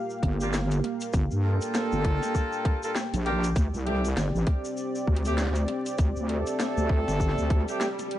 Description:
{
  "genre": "glitch hop",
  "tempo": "99 BPM",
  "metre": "4/4",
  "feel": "swing 59% on 16ths",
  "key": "G minor",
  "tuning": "A4 = 440 Hz",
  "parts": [
    { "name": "dark analog pad", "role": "sustained chords", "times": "0.0-8.2 s", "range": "Bb3 to G5", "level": "-32 LUFS", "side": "right 1 dB", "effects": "chorus, sidechain pumping" },
    { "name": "cabasa", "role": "percussion", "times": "0.1-8.1 s", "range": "none", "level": "-43 LUFS", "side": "left 2 dB", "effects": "none" },
    { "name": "wobble bass", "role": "bass", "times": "0.2-7.7 s", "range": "G1 to G2", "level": "-26 LUFS", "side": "equal", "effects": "chorus, tube saturation" },
    { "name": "drum and bass drum kit", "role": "drums", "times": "0.2-8.2 s", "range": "hi-hat, snare drum", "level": "-33 LUFS", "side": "equal", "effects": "overdrive" },
    { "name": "electronic kick drum", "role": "drums", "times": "0.2-7.6 s", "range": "none", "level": "-25 LUFS", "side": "equal", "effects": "overdrive" },
    { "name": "clear horn section", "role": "stabs", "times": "0.4-7.9 s", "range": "A3 to A4", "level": "-31 LUFS", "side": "equal", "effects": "sidechain pumping, ping-pong delay" },
    { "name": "swell", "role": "sound effects", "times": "7.4-8.2 s", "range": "none", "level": "-36 LUFS", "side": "right 2 dB", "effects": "none" }
  ],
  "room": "little or no reverb",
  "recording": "vinyl crackle, nothing above 10.3 kHz",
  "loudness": "-24 LUFS",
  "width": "side -13 dB against mid",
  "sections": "0.0-8.2 A section",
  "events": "swell 7.4-8.2",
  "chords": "0.0 Gm7; 3.6 D7sus4"
}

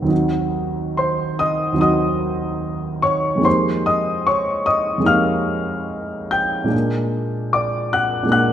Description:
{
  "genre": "classical, impressionist solo piano",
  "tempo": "65-77 BPM",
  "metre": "4/4",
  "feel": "rubato",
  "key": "Eb dorian",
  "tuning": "A4 = 441 Hz",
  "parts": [
    { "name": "warm concert grand piano", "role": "solo", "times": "0.0-8.5 s", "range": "Eb2 to G6", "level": "-17 LUFS", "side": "equal", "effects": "none" }
  ],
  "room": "moderate scoring stage reverb, RT60 1.6 s",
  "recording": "none",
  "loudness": "-17 LUFS",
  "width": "side -10 dB against mid",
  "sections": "0.1-8.5 A section",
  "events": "none",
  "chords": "0.1 Ebm6; 3.5 Fm11; 6.7 Bbaug7"
}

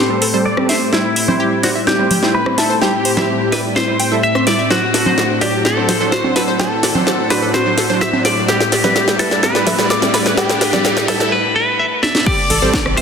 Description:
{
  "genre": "progressive house",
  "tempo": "127 BPM",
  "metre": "4/4",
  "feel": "straight",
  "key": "A dorian",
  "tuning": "A4 = 440 Hz",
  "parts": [
    { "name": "direct-recorded clean electric guitar", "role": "melody", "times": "0.0-13.0 s", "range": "E4 to E5", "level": "-18 LUFS", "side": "left 1 dB", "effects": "phaser, low-pass filter, tape echo" },
    { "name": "warm symphonic violin section", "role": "second line", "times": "0.0-13.0 s", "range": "E4 to E5", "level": "-25 LUFS", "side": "left 2 dB", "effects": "sidechain pumping, low-pass filter, tape echo" },
    { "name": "evolving wavetable pad", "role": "sustained chords", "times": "0.0-13.0 s", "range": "A2 to F#5", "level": "-22 LUFS", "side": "left 2 dB", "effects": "chorus, built-in reverb, sidechain pumping" },
    { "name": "analog pluck", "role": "arpeggios", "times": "0.0-13.0 s", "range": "F#4 to C6", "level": "-23 LUFS", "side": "left 1 dB", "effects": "chorus, sidechain pumping, tape echo" },
    { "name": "supersaw stab", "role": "stabs", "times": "0.0-13.0 s", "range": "F#3 to E5", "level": "-21 LUFS", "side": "right 4 dB", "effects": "sidechain pumping, low-pass filter, tape echo" },
    { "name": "house drum kit", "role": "drums", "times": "0.2-13.0 s", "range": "crash cymbal, hi-hat, rim click, snare drum", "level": "-18 LUFS", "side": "equal", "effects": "overdrive" },
    { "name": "congas", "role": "percussion", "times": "0.6-10.8 s", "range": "none", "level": "-23 LUFS", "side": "equal", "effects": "sidechain pumping on perc" },
    { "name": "riser", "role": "sound effects", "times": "6.9-11.3 s", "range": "none", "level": "-26 LUFS", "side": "left 2 dB", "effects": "none" },
    { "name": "electronic kick drum", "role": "drums", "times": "12.3-12.8 s", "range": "none", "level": "-19 LUFS", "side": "equal", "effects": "overdrive" },
    { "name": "tight sequencer bass", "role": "bass", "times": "12.5-13.0 s", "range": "A1", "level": "-20 LUFS", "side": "equal", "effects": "sidechain pumping" }
  ],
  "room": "moderate lush hall reverb, RT60 2.9 s",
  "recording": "dense, heavily limited modern master",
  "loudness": "-12 LUFS",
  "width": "side -6 dB against mid",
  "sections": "0.0-12.3 A section",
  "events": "build-up 0.0-12.3; drum fill 0.0-11.3, 12.0; filter sweep on supersaw synth 0.0-12.3; filter sweep on clean electric guitar 0.0-12.3; riser 6.9-11.3",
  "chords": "0.0 Am7; 0.9 C/A; 4.7 D7/A; 8.5 Em7/A; 12.3 Am7"
}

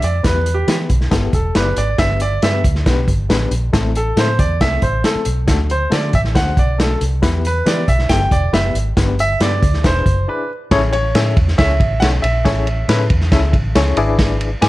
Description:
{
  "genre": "uptempo 1960s-style soul",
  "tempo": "138 BPM",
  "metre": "4/4",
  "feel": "straight",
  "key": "unclear",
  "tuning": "A4 = 441 Hz",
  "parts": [
    { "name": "clear concert grand piano", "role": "melody", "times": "0.0-14.7 s", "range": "G4 to G#5", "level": "-20 LUFS", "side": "right 1 dB", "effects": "slapback echo, plate reverb" },
    { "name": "barky reed electric piano", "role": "accompaniment", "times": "0.0-14.7 s", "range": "A3 to E5", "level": "-22 LUFS", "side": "left 4 dB", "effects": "overdrive, fast tremolo, plate reverb" },
    { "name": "vintage muted fingered electric bass", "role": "bass", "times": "0.0-14.7 s", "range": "E1 to E3", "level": "-18 LUFS", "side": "equal", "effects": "none" },
    { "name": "vintage drum kit", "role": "drums", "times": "0.0-14.7 s", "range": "hi-hat, kick drum, ride cymbal, snare drum", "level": "-17 LUFS", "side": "equal", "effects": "none" }
  ],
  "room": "light reverb",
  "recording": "none",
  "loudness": "-13 LUFS",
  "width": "side -17 dB against mid",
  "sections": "0.0-10.7 A section; 10.7-14.7 B section",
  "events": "grand piano solo 0.0-10.7; break 10.3-10.7",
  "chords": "0.2 Em; 2.0 G; 3.7 Am; 5.5 D; 7.2 Em; 9.0 G; 9.8 E7; 10.7 Amaj7; 14.0 E7"
}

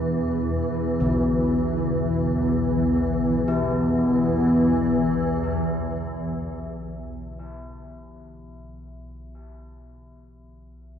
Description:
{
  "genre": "dark ambient drone",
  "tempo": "free time",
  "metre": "none",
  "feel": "none",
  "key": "unclear",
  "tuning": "A4 = 440 Hz",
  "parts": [
    { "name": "dark analog pad", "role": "sustained chords", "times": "0.0-6.9 s", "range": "B3 to B4", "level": "-23 LUFS", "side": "equal", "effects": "chorus" },
    { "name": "old church bells", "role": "arpeggios", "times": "0.0-8.8 s", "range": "B2 to E4", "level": "-30 LUFS", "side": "left 2 dB", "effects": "analog delay" },
    { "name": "swarming drone", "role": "drone", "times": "0.0-6.5 s", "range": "E2 to E3", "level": "-25 LUFS", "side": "left 1 dB", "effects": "built-in reverb" }
  ],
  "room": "wet echo chamber reverb, RT60 2.2 s",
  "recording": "echo-heavy mix",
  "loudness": "-20 LUFS",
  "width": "side -8 dB against mid",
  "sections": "0.0-3.5 A section; 3.5-8.7 B section",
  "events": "none",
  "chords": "0.0 E5"
}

